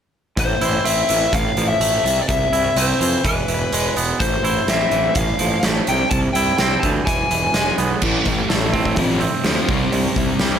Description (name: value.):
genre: quiet-loud alternative rock.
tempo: 126 BPM.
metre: 4/4.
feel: straight.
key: A minor.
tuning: A4 = 441 Hz.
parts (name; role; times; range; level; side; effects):
nasal lead guitar with a parked wah; melody; 0.4-7.7 s; B4 to A5; -21 LUFS; left 3 dB; overdrive.
twangy electric guitar; arpeggios; 0.4-10.6 s; A2 to E4; -23 LUFS; right 5 dB; none.
fuzz picked electric bass; bass; 0.4-10.5 s; E1 to F2; -22 LUFS; equal; overdrive.
huge arena drum kit; drums; 0.4-10.5 s; crash cymbal, hi-hat, kick drum, snare drum; -21 LUFS; equal; none.
thick fuzz guitar; riff; 8.0-10.6 s; F2 to C4; -21 LUFS; left 1 dB; distortion.
room: light reverb, small room ambience.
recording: none.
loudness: -16 LUFS.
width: side -8 dB against mid.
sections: 0.4-8.0 A section; 8.0-10.6 B section.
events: none.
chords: 0.4 Am; 1.3 F/A; 2.1 C; 3.2 E; 4.2 Am; 5.2 F/A; 5.9 C; 7.1 E; 8.0 Am; 9.0 F/A; 9.7 C5.